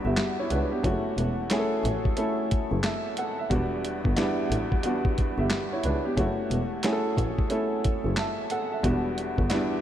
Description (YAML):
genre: hip hop, boom-bap hip-hop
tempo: 90 BPM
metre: 4/4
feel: swing 63% on 16ths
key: unclear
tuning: A4 = 440 Hz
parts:
  - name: clear upright piano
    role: accompaniment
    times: 0.0-9.8 s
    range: E2 to A5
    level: -27 LUFS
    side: equal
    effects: cassette tape, high-pass filter, low-pass filter
  - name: muted double bass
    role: bass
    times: 0.1-9.5 s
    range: E1 to C#2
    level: -29 LUFS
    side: equal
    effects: none
  - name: dusty soul sampler-style drum kit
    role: drums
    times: 0.2-9.7 s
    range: handclaps, hi-hat, kick drum, snare drum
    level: -29 LUFS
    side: equal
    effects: none
room: moderate cathedral reverb, RT60 5.0 s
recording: dreamy mix soaked in reverb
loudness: -24 LUFS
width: side -11 dB against mid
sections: 0.0-9.8 A section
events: none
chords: 0.0 Em7; 0.8 F#m7; 3.5 Em7; 6.2 F#m7; 8.8 Em7